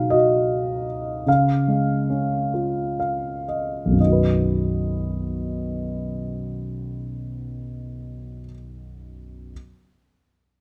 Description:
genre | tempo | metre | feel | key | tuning
classical, lyrical solo piano | 38-53 BPM (dotted quarters) | 6/8 | rubato | B lydian | A4 = 440 Hz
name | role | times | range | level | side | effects
dark concert grand piano | solo | 0.0-9.5 s | B1 to E#5 | -24 LUFS | equal | none
room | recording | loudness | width
light reverb | close, detailed microphones | -23 LUFS | mono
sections
0.0-4.0 A section; 4.0-7.0 B section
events
slowing down 0.0-4.0; grand piano fill 2.5-4.0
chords
0.0 B; 1.3 C#; 4.0 B

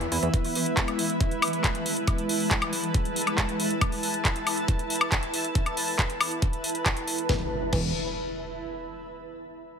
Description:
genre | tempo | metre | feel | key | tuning
psychedelic trance | 138 BPM | 4/4 | straight | E major | A4 = 440 Hz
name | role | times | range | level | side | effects
bubbling stepped-filter texture | sustained chords | 0.0-7.3 s | E3 to B3 | -34 LUFS | equal | chorus, built-in reverb, sidechain pumping
fat analog bass | bass | 0.0-0.3, 7.3-7.9 s | E1 to E2 | -30 LUFS | equal | tube saturation
drum and bass drum kit | drums | 0.0-7.8 s | crash cymbal, handclaps, hi-hat, snare drum, woodblock | -28 LUFS | left 1 dB | none
granular cloud pad | texture | 0.0-9.0 s | E4 to A5 | -30 LUFS | right 1 dB | built-in reverb, sidechain pumping
woody wave-folded pluck | riff | 0.1-0.3, 7.3-7.9 s | E3 to E4 | -34 LUFS | moving between left 2 dB and right 6 dB | chorus, auto-pan, sidechain pumping, dub echo
electronic kick drum | drums | 0.3-7.8 s | none | -26 LUFS | equal | none
impact | sound effects | 7.3-9.0 s | none | -37 LUFS | equal | none
room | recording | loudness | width
light reverb, digital ambience | none | -24 LUFS | side -7 dB against mid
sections
0.0-7.3 A section; 7.3-9.0 B section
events
none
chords
0.0 E5

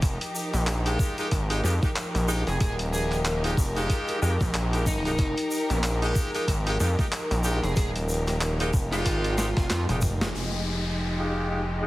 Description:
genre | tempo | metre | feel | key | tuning
glitch hop | 93 BPM | 4/4 | swing 58% on 16ths | F minor | A4 = 440 Hz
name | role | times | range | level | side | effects
rich studio string section | sustained chords | 0.0-11.9 s | F3 to Bb4 | -32 LUFS | equal | sidechain pumping, low-pass filter
gritty driven synth bass | bass | 0.0-11.9 s | Eb1 to F2 | -27 LUFS | equal | tube saturation
boom bap sampler-style drum kit | drums | 0.0-10.3 s | handclaps, hi-hat, snare drum, toms | -32 LUFS | equal | none
electronic kick drum | drums | 0.0-10.2 s | none | -26 LUFS | equal | none
tube shaker | percussion | 0.0-10.3 s | none | -38 LUFS | left 1 dB | none
bright horn section | stabs | 0.9-11.9 s | Ab3 to G4 | -32 LUFS | equal | sidechain pumping, low-pass filter, tape echo
fuzz lead guitar | melody | 2.5-9.8 s | Eb4 to Ab4 | -33 LUFS | equal | distortion, tape echo
downlifter | sound effects | 10.3-11.9 s | none | -34 LUFS | left 2 dB | none
room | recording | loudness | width
light reverb | heavily compressed radio sound, multiband compression | -23 LUFS | side -17 dB against mid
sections
0.0-10.3 A section; 10.3-11.9 B section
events
drum fill 9.4-10.3; band accent 10.2-10.5; filter sweep on horn section 10.3-11.9; filter sweep on string section 10.3-11.9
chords
0.0 Fm9

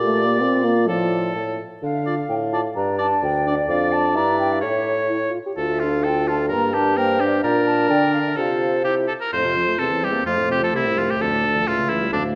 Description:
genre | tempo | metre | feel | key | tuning
quick classical-period movement for wind quintet | 128 BPM | 2/4 | straight | D minor, F major from 7.4 s | A4 = 440 Hz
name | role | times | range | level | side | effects
mellow hollow silver concert flute | melody | 0.0-12.4 s | A4 to Bb5 | -28 LUFS | equal | none
bright oboe | second line | 0.0-12.2 s | D4 to D5 | -26 LUFS | equal | none
warm French horn | accompaniment | 0.0-12.4 s | F2 to G4 | -28 LUFS | equal | none
warm clarinet | accompaniment | 0.0-12.4 s | A3 to F5 | -28 LUFS | equal | none
dark bassoon | bass | 0.0-12.4 s | C2 to D3 | -26 LUFS | equal | none
room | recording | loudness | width
wet recital hall reverb, RT60 1.6 s | dark, warm production | -20 LUFS | mono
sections
0.0-1.8 A section; 1.8-9.3 B section; 9.3-12.4 C section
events
none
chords
0.4 Bb; 0.9 Dm/A; 1.3 A; 1.8 Dm; 2.8 G5; 3.7 Dm/F; 4.2 Em7b5/G; 4.6 A; 5.6 Dm; 6.5 Gm; 7.4 Bb; 8.4 F/C; 8.9 C; 9.3 F; 9.8 C7/E; 10.3 F; 11.2 Dm; 11.7 A7/C#

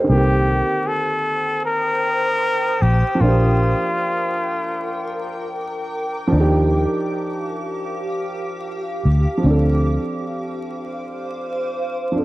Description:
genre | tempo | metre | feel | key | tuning
lo-fi hip hop | 77 BPM | 4/4 | swing 63% on 16ths | C dorian | A4 = 436 Hz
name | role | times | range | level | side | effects
dark upright piano | accompaniment | 0.0-12.2 s | D3 to C5 | -23 LUFS | right 2 dB | cassette tape
trumpet with straight mute | melody | 0.1-5.5 s | F4 to Bb4 | -21 LUFS | left 1 dB | none
granular cloud pad | sustained chords | 1.4-12.2 s | G4 to Eb6 | -27 LUFS | equal | built-in reverb
vintage muted fingered electric bass | bass | 0.1-10.0 s | Bb1 to Eb2 | -16 LUFS | equal | tube saturation
room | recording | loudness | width
moderate studio reverb, RT60 0.6 s | worn, warbling old tape, cassette tape, vinyl crackle, warbly pitch drift | -18 LUFS | side -18 dB against mid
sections
0.1-12.2 A section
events
none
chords
0.1 Cm7; 3.2 Bb6; 6.3 Ebmaj9; 9.4 Dm7

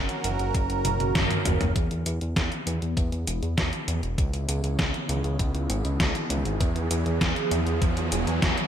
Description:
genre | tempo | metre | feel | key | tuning
synthwave | 99 BPM | 4/4 | straight | unclear | A4 = 440 Hz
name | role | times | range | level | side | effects
phased analog pad | sustained chords | 0.0-8.7 s | B3 to C#5 | -32 LUFS | right 3 dB | phaser, chorus, sidechain pumping
fat analog bass | bass | 0.0-8.6 s | E1 to E2 | -27 LUFS | equal | sidechain pumping
detuned 8-bit digital drum machine | drums | 0.1-8.7 s | hi-hat, snare drum, toms | -28 LUFS | equal | gated reverb
electronic kick drum | drums | 0.5-8.5 s | none | -27 LUFS | equal | none
riser | sound effects | 3.8-8.7 s | none | -35 LUFS | right 1 dB | none
room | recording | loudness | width
moderate plate reverb, RT60 2.1 s | bright 1980s-style digital production | -23 LUFS | side -9 dB against mid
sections
0.0-1.8 A section; 1.8-8.7 B section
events
drum fill 0.8-1.8; band accent 1.2-1.5; riser 3.8-8.7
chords
0.0 F#; 1.8 E; 4.2 C#m7; 6.6 E

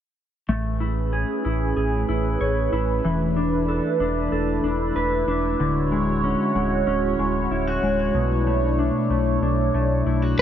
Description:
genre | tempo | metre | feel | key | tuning
dream pop | 94 BPM | 4/4 | straight | A major | A4 = 438 Hz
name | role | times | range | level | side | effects
phased analog pad | sustained chords | 0.5-10.4 s | G#3 to C#5 | -24 LUFS | right 1 dB | phaser, chorus
mellow electric guitar | arpeggios | 0.5-10.4 s | B2 to C#5 | -24 LUFS | equal | lush chorus, digital delay
sub bass with octave | bass | 0.5-10.4 s | D1 to B1 | -26 LUFS | equal | none
room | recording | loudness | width
moderate huge ambient reverb, RT60 4.2 s | none | -20 LUFS | side -10 dB against mid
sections
0.5-10.4 A section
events
none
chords
0.5 Amaj9; 3.0 E7sus4; 5.6 Dmaj9#11; 8.1 Bm11

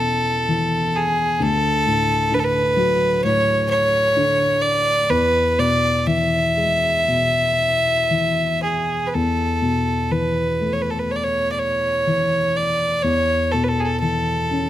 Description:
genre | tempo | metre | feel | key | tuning
celtic folk, Celtic slow air | 56-67 BPM | 4/4 | rubato | E mixolydian | A4 = 438 Hz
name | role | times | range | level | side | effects
clear fiddle | melody | 0.0-14.7 s | G#4 to E5 | -18 LUFS | right 1 dB | none
dark upright piano | accompaniment | 0.0-14.7 s | D2 to C#4 | -22 LUFS | left 3 dB | none
room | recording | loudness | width
light reverb | close, detailed microphones | -17 LUFS | side -12 dB against mid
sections
0.0-9.1 A section; 9.1-14.7 A section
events
none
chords
0.0 Aadd9/E; 1.4 D; 5.1 E; 9.1 Esus4; 13.0 Aadd9/E

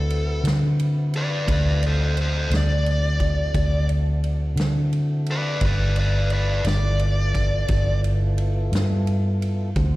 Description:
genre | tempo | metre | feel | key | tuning
slow blues | 58 BPM (dotted quarters) | 12/8 | straight | unclear | A4 = 439 Hz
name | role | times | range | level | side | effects
smooth overdriven lead guitar | melody | 0.0-8.0 s | A4 to D5 | -27 LUFS | left 1 dB | plate reverb, slapback echo, analog delay
tonewheel organ | sustained chords | 0.0-10.0 s | E3 to C5 | -36 LUFS | equal | overdrive, slow rotary speaker, plate reverb
vintage muted fingered electric bass | bass | 0.0-10.0 s | G1 to D3 | -21 LUFS | equal | none
natural country drum kit | drums | 0.1-9.9 s | kick drum, ride cymbal, snare drum | -28 LUFS | equal | none
room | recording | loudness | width
little or no reverb | live gig heard through the venue's PA, recital hall reverb | -19 LUFS | side -18 dB against mid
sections
0.0-10.0 A section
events
none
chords
0.0 D13; 5.6 G13

